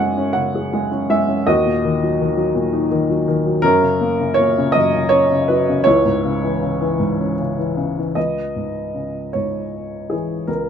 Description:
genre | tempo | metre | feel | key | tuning
classical, lyrical solo piano | 50-57 BPM (dotted quarters) | 6/8 | rubato | C# dorian | A4 = 440 Hz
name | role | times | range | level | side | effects
dark upright piano | solo | 0.0-10.7 s | C#2 to G#5 | -16 LUFS | equal | none
room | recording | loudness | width
little or no reverb | close, detailed microphones | -16 LUFS | side -8 dB against mid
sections
0.0-8.2 A section; 8.2-10.7 B section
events
none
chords
0.0 F#sus2; 1.5 D#m; 3.6 F#; 5.9 C#m

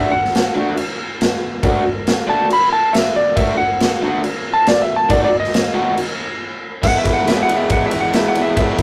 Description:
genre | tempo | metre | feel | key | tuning
garage rock duo or trio | 138 BPM | 4/4 | straight | unclear | A4 = 442 Hz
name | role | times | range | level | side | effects
clean lap steel guitar | melody | 0.0-8.8 s | D5 to B5 | -19 LUFS | equal | none
raw garage guitar | riff | 0.0-8.8 s | B2 to F#4 | -21 LUFS | equal | overdrive
raw garage drum kit | drums | 0.2-8.8 s | crash cymbal, kick drum, ride cymbal, snare drum | -21 LUFS | equal | none
room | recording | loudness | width
moderate booth ambience, RT60 0.2 s | rough rehearsal-room recording, tube saturation | -17 LUFS | mono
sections
0.0-6.8 A section; 6.8-8.8 B section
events
electric slide guitar solo 0.0-6.8; break 6.4-6.8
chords
0.0 D; 5.1 B7; 6.8 E

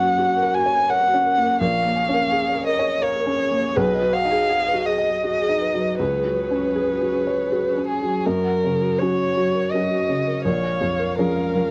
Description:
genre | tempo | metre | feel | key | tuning
neoclassical piano and strings | 82 BPM | 3/4 | rubato | unclear | A4 = 440 Hz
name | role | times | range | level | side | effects
dark violin | melody | 0.0-11.7 s | G#4 to G#5 | -23 LUFS | equal | none
felt-muted upright piano | accompaniment | 0.0-11.7 s | A#1 to D#5 | -26 LUFS | equal | none
warm chamber string section | sustained chords | 0.0-11.7 s | F#3 to E#5 | -36 LUFS | equal | none
buzzing marimba with soft mallets | arpeggios | 0.0-11.7 s | C#4 to G#5 | -31 LUFS | equal | none
room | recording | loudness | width
moderate studio reverb, RT60 0.5 s | worn, warbling old tape, cassette tape, warbly pitch drift | -21 LUFS | mono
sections
0.0-8.2 A section; 8.2-11.7 B section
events
none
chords
0.0 F#; 1.6 A#m7; 3.8 G#m7/B; 6.0 C#7sus4; 8.2 F#; 10.4 A#m7

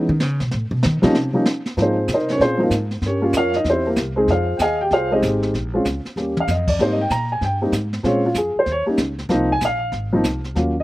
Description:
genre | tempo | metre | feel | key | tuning
jazz piano trio | 191 BPM | 4/4 | swing 63% on 8ths | Ab major | A4 = 442 Hz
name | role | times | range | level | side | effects
dark upright piano | melody | 0.0-10.8 s | F3 to Bb5 | -18 LUFS | equal | slapback echo
upright bass | bass | 0.0-10.8 s | Ab1 to Eb3 | -24 LUFS | equal | none
jazz brush drum kit | drums | 0.2-10.8 s | brushed snare drum, crash cymbal, hi-hat, kick drum, snare drum, toms | -26 LUFS | right 1 dB | none
room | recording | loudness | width
little or no reverb | recorded outdoors, with no room sound | -17 LUFS | side -17 dB against mid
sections
0.0-1.8 A section; 1.8-10.8 B section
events
upright bass solo 0.0-1.8; drum fill 6.2-6.5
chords
0.0 Cbadd9; 0.5 Cb7; 1.1 N.C.; 1.8 Ab69; 3.0 Gm7b5; 3.6 C7; 4.3 Fm7; 5.5 Bbm; 6.2 Eb9; 6.8 Abmaj9; 8.0 Bbm9; 8.7 Eb7(no3); 9.3 Ab69

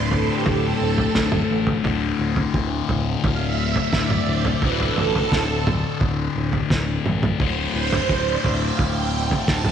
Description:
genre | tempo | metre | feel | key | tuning
psychedelic rock | 86 BPM | 4/4 | straight | unclear | A4 = 440 Hz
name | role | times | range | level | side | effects
phased string machine | sustained chords | 0.0-9.7 s | G4 to A5 | -25 LUFS | right 8 dB | ensemble chorus, phaser
fuzz guitar | riff | 0.0-9.7 s | D2 to D3 | -23 LUFS | left 8 dB | distortion, phaser
overdriven picked electric bass | bass | 0.0-9.7 s | D1 to A1 | -26 LUFS | right 1 dB | tube saturation
cloth-damped thuddy drum kit | drums | 0.1-9.7 s | kick drum, snare drum, toms | -23 LUFS | right 1 dB | none
room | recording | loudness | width
moderate echo chamber reverb, RT60 2.4 s | 1960s-style stereo with parts hard left and right | -19 LUFS | side -8 dB against mid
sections
0.0-9.7 A section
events
string machine solo 0.0-9.7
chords
0.0 D5

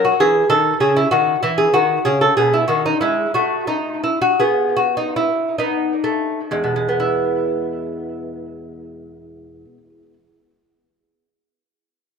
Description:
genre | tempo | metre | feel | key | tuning
classical, baroque-style dance for lute | 40-66 BPM (dotted quarters) | 6/8 | rubato | E major | A4 = 440 Hz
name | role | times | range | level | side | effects
lute | solo | 0.0-10.1 s | E2 to A4 | -16 LUFS | equal | tape echo
room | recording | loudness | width
light reverb | close, detailed microphones | -16 LUFS | side -6 dB against mid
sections
0.0-7.0 A section; 7.0-12.2 B section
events
slowing down 1.4-7.0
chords
0.0 F#7(no3); 0.5 F#m13; 2.4 G#m/B; 3.4 N.C.; 5.6 B7; 7.0 E

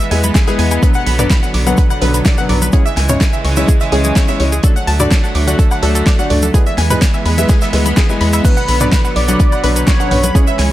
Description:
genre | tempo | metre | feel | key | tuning
progressive house | 126 BPM | 4/4 | straight | B dorian | A4 = 439 Hz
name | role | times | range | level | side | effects
rich chamber string section | sustained chords | 0.0-10.7 s | C#3 to C#4 | -21 LUFS | right 2 dB | sidechain pumping
glassy wavetable pluck | arpeggios | 0.0-10.7 s | G#4 to A6 | -21 LUFS | equal | chorus, sidechain pumping, dub echo
gated 80s drum kit | drums | 0.0-10.7 s | hi-hat, snare drum | -30 LUFS | right 2 dB | none
cabasa | percussion | 0.0-10.6 s | none | -25 LUFS | left 1 dB | none
felt-muted upright piano | stabs | 0.1-10.4 s | B2 to D5 | -20 LUFS | left 3 dB | sidechain pumping, dub echo
tight sequencer bass | bass | 0.1-10.7 s | B1 to E2 | -15 LUFS | equal | sidechain pumping
deep house drum kit | drums | 0.1-10.7 s | crash cymbal, hi-hat, snare drum | -21 LUFS | equal | overdrive
electronic congas, woodblock and toms | percussion | 0.2-10.3 s | none | -22 LUFS | left 1 dB | sidechain pumping on perc, sidechain pumping on toms
electronic kick drum | drums | 0.3-10.5 s | none | -12 LUFS | equal | none
wide unison lead | melody | 8.4-10.5 s | B4 to D5 | -20 LUFS | equal | dub echo
backwards swelling texture | texture | 9.5-10.7 s | B5 | -29 LUFS | left 2 dB | built-in reverb, sidechain pumping
room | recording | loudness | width
small room ambience | none | -10 LUFS | side -14 dB against mid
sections
0.0-10.7 A section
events
none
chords
0.0 E; 0.8 Bm; 2.7 C#m; 4.6 D; 6.5 E; 8.4 Bm

